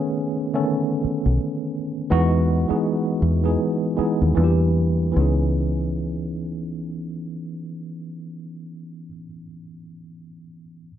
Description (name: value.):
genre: R&B, neo-soul.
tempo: 74-86 BPM.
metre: 4/4.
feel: swing 60% on 16ths.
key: C# minor.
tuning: A4 = 440 Hz.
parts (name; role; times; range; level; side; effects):
tine electric piano; accompaniment; 0.0-10.9 s; D3 to A4; -24 LUFS; right 1 dB; overdrive, fast stereo tremolo.
deep dub fingered electric bass; bass; 1.0-9.1 s; B1 to E2; -20 LUFS; equal; none.
room: small room ambience.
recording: dry, close 1970s-style studio recording.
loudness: -20 LUFS.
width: side -10 dB against mid.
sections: 0.0-5.1 A section; 5.1-8.4 B section.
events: slowing down 0.0-5.1.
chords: 0.0 B13; 2.1 Emaj9; 4.4 Em7b5; 5.1 C#m9.